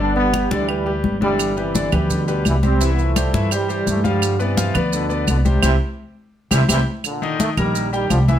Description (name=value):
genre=latin, salsa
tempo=170 BPM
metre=4/4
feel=straight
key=C major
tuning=A4 = 441 Hz
part: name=clear trombone section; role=melody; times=0.0-8.4 s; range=G2 to D4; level=-22 LUFS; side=right 2 dB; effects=none
part: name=bright concert grand piano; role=accompaniment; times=0.0-8.4 s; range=D3 to Bb5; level=-24 LUFS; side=left 3 dB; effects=none
part: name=upright bass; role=bass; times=0.0-8.4 s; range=G1 to G2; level=-20 LUFS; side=equal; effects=none
part: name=congas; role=percussion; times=0.2-8.4 s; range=none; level=-23 LUFS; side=left 2 dB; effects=none
part: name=claves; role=percussion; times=0.3-8.3 s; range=none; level=-26 LUFS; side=right 9 dB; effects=none
part: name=maracas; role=percussion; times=1.4-8.4 s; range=none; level=-29 LUFS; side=right 7 dB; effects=none
room=moderate studio reverb, RT60 0.8 s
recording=none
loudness=-16 LUFS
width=side -10 dB against mid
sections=0.0-7.0 A section; 7.0-8.4 B section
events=drum fill 5.6-7.0; band accent 5.6-7.0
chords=0.0 G; 1.4 G6; 2.8 C; 4.2 G7; 5.6 C; 7.0 Ebmaj7